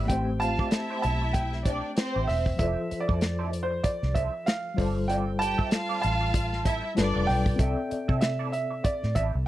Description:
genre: lush 1970s-style soul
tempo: 96 BPM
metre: 4/4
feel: swing 58% on 16ths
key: A minor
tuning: A4 = 437 Hz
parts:
  - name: clear grand piano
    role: melody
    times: 0.0-9.2 s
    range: C5 to A5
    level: -31 LUFS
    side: right 3 dB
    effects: slapback echo
  - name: warm studio violin section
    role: second line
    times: 0.0-7.4 s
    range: C4 to G5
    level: -33 LUFS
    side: left 1 dB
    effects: none
  - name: mellow reed electric piano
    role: accompaniment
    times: 0.0-9.5 s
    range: E3 to E5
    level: -33 LUFS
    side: left 3 dB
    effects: fast tremolo
  - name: electric guitar through a small old amp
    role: riff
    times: 0.0-9.4 s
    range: B3 to E5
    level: -37 LUFS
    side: right 5 dB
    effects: wah, wide subtle chorus
  - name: vintage muted fingered electric bass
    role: bass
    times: 0.0-9.5 s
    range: E1 to C3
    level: -29 LUFS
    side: equal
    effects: none
  - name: warm soul drum kit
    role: drums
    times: 0.1-9.3 s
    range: hi-hat, kick drum, snare drum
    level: -27 LUFS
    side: equal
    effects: none
room: small room ambience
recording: dry, close 1970s-style studio recording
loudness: -24 LUFS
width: side -14 dB against mid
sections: 0.1-9.5 A section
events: none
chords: 0.1 Am7; 2.6 Fmaj7; 4.8 G9sus4; 7.0 G9; 7.6 C69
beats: | 0.10 0.72 1.35 1.97 | 2.60 3.22 3.85 4.47 | 5.10 5.72 6.35 6.97 | 7.60 8.22 8.85 9.48

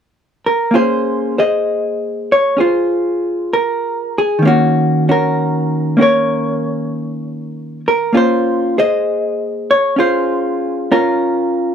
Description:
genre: jazz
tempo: 65 BPM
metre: 4/4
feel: swing 69% on 8ths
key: Bb minor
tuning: A4 = 440 Hz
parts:
  - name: vintage hollow-body jazz guitar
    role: accompaniment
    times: 0.5-11.7 s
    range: Eb3 to Eb5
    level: -13 LUFS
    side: equal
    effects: none
room: moderate club reverb, RT60 0.6 s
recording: none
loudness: -13 LUFS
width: side -8 dB against mid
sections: 0.7-11.7 A section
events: none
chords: 0.0 N.C.; 0.7 Bbm9; 4.4 Ebm7; 8.1 Bbm9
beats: | 0.72 1.65 2.58 3.50 | 4.42 5.34 6.26 7.18 | 8.11 9.03 9.95 10.87

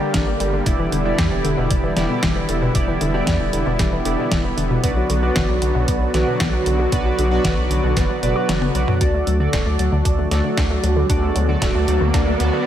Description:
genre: synthwave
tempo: 115 BPM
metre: 4/4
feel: straight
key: D major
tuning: A4 = 440 Hz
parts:
  - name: soft supersaw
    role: sustained chords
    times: 0.0-12.7 s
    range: D3 to G4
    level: -24 LUFS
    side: equal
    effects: sidechain pumping, low-pass filter
  - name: wide unison pluck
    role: arpeggios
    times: 0.0-12.6 s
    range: B2 to F#4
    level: -25 LUFS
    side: left 2 dB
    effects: cassette tape, ping-pong delay
  - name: chorused polysynth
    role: stabs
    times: 0.0-12.7 s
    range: E4 to D5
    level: -24 LUFS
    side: right 3 dB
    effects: ping-pong delay
  - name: round analog bass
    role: bass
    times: 0.1-12.5 s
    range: D1 to E2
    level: -22 LUFS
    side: equal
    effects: none
  - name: detuned 8-bit digital drum machine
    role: drums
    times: 0.1-12.5 s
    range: hi-hat, snare drum, toms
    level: -25 LUFS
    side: equal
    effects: high-pass filter on snare, studio ambience, high-pass filter on hats, high-pass filter on toms
  - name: electronic kick drum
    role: drums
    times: 0.1-12.2 s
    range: none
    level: -22 LUFS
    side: equal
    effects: studio ambience
  - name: riser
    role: sound effects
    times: 10.1-12.7 s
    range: none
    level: -28 LUFS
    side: equal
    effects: none
room: light reverb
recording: none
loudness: -16 LUFS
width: side -10 dB against mid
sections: 0.0-9.0 A section; 9.0-12.7 B section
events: kick drops out 8.5-9.0; drum fill 8.5-9.0; riser 10.1-12.7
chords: 0.0 Gm; 0.7 Em7; 4.8 Bm; 9.0 D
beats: 0.14 | 0.66 1.18 1.71 2.23 | 2.75 3.27 3.79 4.32 | 4.84 5.36 5.88 6.40 | 6.92 7.45 7.97 8.49 | 9.01 9.53 10.05 10.57 | 11.10 11.62 12.14 12.66

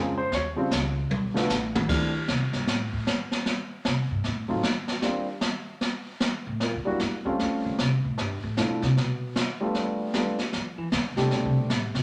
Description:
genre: jazz piano trio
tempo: 153 BPM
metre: 4/4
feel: swing 64% on 8ths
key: C major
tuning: A4 = 440 Hz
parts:
  - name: dark concert grand piano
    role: melody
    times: 0.0-2.1, 4.5-11.7 s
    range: Db3 to Db5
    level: -30 LUFS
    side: equal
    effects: none
  - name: upright bass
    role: bass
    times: 0.0-12.0 s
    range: A1 to Bb3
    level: -31 LUFS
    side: equal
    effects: none
  - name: jazz brush drum kit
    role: drums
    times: 0.3-12.0 s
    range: brushed snare drum, crash cymbal, hi-hat, kick drum, snare drum, toms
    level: -30 LUFS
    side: equal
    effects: none
room: moderate large studio reverb, RT60 1.1 s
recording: none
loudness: -27 LUFS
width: mono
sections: 0.0-1.9 A section; 1.9-12.0 A section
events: grand piano solo 0.0-1.9; drum fill 1.1-1.9; upright bass solo 1.9-12.0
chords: 0.3 Eb7(no3); 1.1 B7(no3); 1.9 C5; 5.0 N.C.; 6.6 Em7b5 (rootless); 7.4 A7alt; 8.2 Dm; 9.7 G9; 11.3 Csus2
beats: | 0.32 0.71 1.10 1.50 | 1.89 2.28 2.67 3.07 | 3.46 3.85 4.25 4.64 | 5.03 5.42 5.82 6.21 | 6.60 7.00 7.39 7.78 | 8.17 8.56 8.96 9.35 | 9.74 10.13 10.52 10.91 | 11.31 11.70

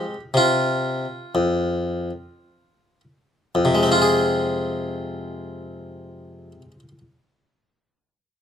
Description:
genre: classical, baroque-style suite movement for harpsichord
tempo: 52-62 BPM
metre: 4/4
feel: rubato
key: F minor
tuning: A4 = 440 Hz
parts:
  - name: harpsichord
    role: solo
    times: 0.0-7.0 s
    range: F2 to Ab4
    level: -20 LUFS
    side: left 1 dB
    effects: none
room: moderate large studio reverb, RT60 0.9 s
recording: none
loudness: -19 LUFS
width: side -8 dB against mid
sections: 0.0-3.6 A section; 3.6-8.1 B section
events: slowing down 0.0-3.6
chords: 0.0 F5; 3.6 Fm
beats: 0.34 1.34 2.42 | 3.56 4.69 5.80 6.93

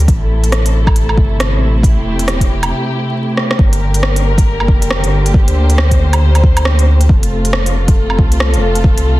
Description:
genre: future garage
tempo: 137 BPM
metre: 4/4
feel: swing 61% on 16ths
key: G dorian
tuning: A4 = 440 Hz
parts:
  - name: dark symphonic string section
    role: sustained chords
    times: 0.0-9.2 s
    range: C3 to C5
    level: -18 LUFS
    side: equal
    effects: sidechain pumping
  - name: warm sub bass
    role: bass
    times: 0.0-9.2 s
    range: E1 to D2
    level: -13 LUFS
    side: equal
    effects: sidechain pumping
  - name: organic electronic drum kit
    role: drums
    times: 0.0-9.0 s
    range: hi-hat, rim click, woodblock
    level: -19 LUFS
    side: right 1 dB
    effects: overdrive
  - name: electronic kick drum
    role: drums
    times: 0.1-8.9 s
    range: none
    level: -12 LUFS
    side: equal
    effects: overdrive
room: little or no reverb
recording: dense, heavily limited modern master, vinyl crackle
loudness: -10 LUFS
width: side -17 dB against mid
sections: 0.0-3.6 A section; 3.6-9.2 B section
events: break 2.7-3.6; drum fill 3.4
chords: 0.1 Am; 3.6 Gm; 7.1 F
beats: | 0.09 0.52 0.96 1.40 | 1.84 2.28 2.71 3.15 | 3.59 4.03 4.47 4.90 | 5.34 5.78 6.22 6.66 | 7.09 7.53 7.97 8.41 | 8.85

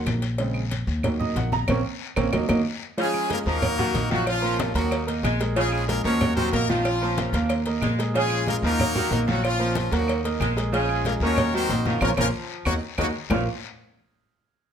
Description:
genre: latin, salsa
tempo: 186 BPM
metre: 4/4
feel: straight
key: Bb minor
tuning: A4 = 440 Hz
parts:
  - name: clear upright piano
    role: accompaniment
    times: 0.0-13.5 s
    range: Db3 to Bb5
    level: -27 LUFS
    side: right 4 dB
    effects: none
  - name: upright bass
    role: bass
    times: 0.0-13.4 s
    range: Bb1 to Eb2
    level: -26 LUFS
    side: left 1 dB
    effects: none
  - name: claves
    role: percussion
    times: 0.1-13.4 s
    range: none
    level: -36 LUFS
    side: right 3 dB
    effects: none
  - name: congas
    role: percussion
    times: 0.1-13.4 s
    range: none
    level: -31 LUFS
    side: left 1 dB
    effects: none
  - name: cowbell and bongos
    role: percussion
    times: 0.1-13.4 s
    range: none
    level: -32 LUFS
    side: left 1 dB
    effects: none
  - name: guiro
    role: percussion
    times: 0.1-13.4 s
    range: none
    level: -39 LUFS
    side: left 9 dB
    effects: none
  - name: brilliant horn section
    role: melody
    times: 3.0-13.1 s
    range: F3 to Db5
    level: -26 LUFS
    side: left 1 dB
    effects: none
  - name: clear saxophone section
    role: second line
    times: 3.0-13.4 s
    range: Bb2 to Ab3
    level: -32 LUFS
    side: equal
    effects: none
room: moderate studio reverb, RT60 0.9 s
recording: none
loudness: -21 LUFS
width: side -8 dB against mid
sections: 0.0-3.0 A section; 3.0-13.3 B section; 13.3-14.6 C section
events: upright piano solo 0.0-3.0; band accent 1.7-3.0, 12.0-13.3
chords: 0.4 Bbm7; 1.0 Ebm; 1.7 Bbmadd9; 2.3 Ebm; 3.0 Bbm7; 3.6 Ebm; 4.3 Bbmadd9; 4.9 Ebm; 5.6 Bbm7; 6.2 Ebm; 6.9 Bbmadd9; 7.5 Eb5; 8.8 Ebm; 9.4 Bbmadd9; 10.1 Ebm; 10.7 Bbm7; 11.4 Ebm; 12.0 Bbmadd9; 12.7 Ebm; 13.3 Bbmadd9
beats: 0.07 | 0.39 0.71 1.04 1.36 | 1.69 2.01 2.33 2.65 | 2.98 3.30 3.62 3.95 | 4.27 4.59 4.92 5.24 | 5.56 5.89 6.21 6.53 | 6.85 7.18 7.50 7.82 | 8.14 8.47 8.79 9.11 | 9.43 9.76 10.08 10.40 | 10.72 11.05 11.37 11.69 | 12.01 12.34 12.66 12.98 | 13.30

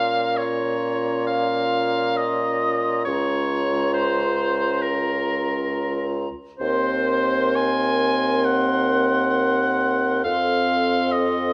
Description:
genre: classical, slow romantic movement for wind quintet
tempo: 67 BPM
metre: 4/4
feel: rubato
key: Bb minor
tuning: A4 = 440 Hz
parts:
  - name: concert flute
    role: melody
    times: 0.0-11.5 s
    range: Bb5 to C6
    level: -34 LUFS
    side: equal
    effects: none
  - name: clear oboe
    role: second line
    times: 0.0-11.5 s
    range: Bb4 to Ab5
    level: -26 LUFS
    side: equal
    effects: none
  - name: clear clarinet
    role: accompaniment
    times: 0.0-11.5 s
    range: F4 to Bb4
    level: -33 LUFS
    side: equal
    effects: none
  - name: mellow French horn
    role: accompaniment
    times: 0.0-11.5 s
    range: C4 to Db4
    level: -31 LUFS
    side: equal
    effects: none
  - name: clear bassoon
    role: bass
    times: 0.0-11.5 s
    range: Db2 to Bb2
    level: -26 LUFS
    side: equal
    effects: none
room: moderate recital hall reverb, RT60 1.4 s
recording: none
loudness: -22 LUFS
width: mono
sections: 0.0-11.5 A section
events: none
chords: 0.0 Bbm; 3.1 Bbm/Db; 6.6 Cm7b5/Eb; 10.2 F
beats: 0.38 1.29 2.19 | 3.06 3.95 4.84 5.71 | 6.59 7.57 8.46 9.35 | 10.24 11.14

